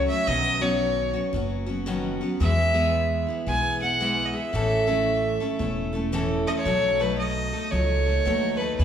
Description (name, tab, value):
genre	honky-tonk and classic country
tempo	113 BPM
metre	4/4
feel	swing 64% on 8ths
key	unclear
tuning	A4 = 439 Hz
part	clear fiddle	melody	0.0-8.8 s	B4 to G#5	-25 LUFS	equal	none
part	picked steel-string acoustic guitar	accompaniment	0.0-8.8 s	A2 to A4	-27 LUFS	equal	none
part	upright bass	bass	0.0-8.8 s	E1 to E2	-28 LUFS	equal	none
room	wet recital hall reverb, RT60 1.5 s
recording	recorded in a church or concert hall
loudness	-22 LUFS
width	side -9 dB against mid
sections	0.0-8.8 A section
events	none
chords	0.3 Badd9; 2.4 E; 4.5 A; 6.7 B7